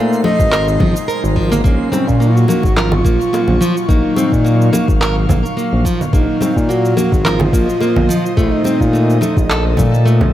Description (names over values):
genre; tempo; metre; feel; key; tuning
organic downtempo; 107 BPM; 4/4; swing 54% on 16ths; unclear; A4 = 440 Hz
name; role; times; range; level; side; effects
airy breathy pad; sustained chords; 0.0-10.3 s; Bb2 to Db6; -23 LUFS; left 1 dB; chorus, sidechain pumping
nylon-string guitar; arpeggios; 0.0-10.3 s; F3 to Bb4; -19 LUFS; right 1 dB; tape echo
smooth synth bass; bass; 0.0-10.3 s; Ab1 to Bb2; -15 LUFS; equal; sidechain pumping
twinkling granular texture; texture; 0.0-1.7 s; C6; -33 LUFS; right 1 dB; built-in reverb
electronic shaker, congas and handclaps; drums; 0.1-10.2 s; none; -21 LUFS; left 2 dB; overdrive, studio reverb
breathy flute-like synth lead; melody; 0.2-10.0 s; Db4 to Eb5; -19 LUFS; equal; chorus, vintage 12-bit sampler grit, ping-pong delay
bongos and congas; percussion; 0.2-10.3 s; none; -23 LUFS; right 1 dB; none
electronic kick drum; drums; 0.4-9.9 s; none; -16 LUFS; equal; studio reverb
room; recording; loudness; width
digital ambience; none; -12 LUFS; side -12 dB against mid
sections
0.0-1.6 A section; 1.6-10.3 A section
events
none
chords
0.0 F7/Bb (rootless); 0.5 Ab7; 1.6 Ebm7; 6.1 Ab7; 8.4 F7/Bb (rootless)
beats
0.52 1.08 | 1.65 2.21 2.77 3.33 | 3.89 4.45 5.01 5.57 | 6.13 6.69 7.25 7.81 | 8.37 8.94 9.49 10.06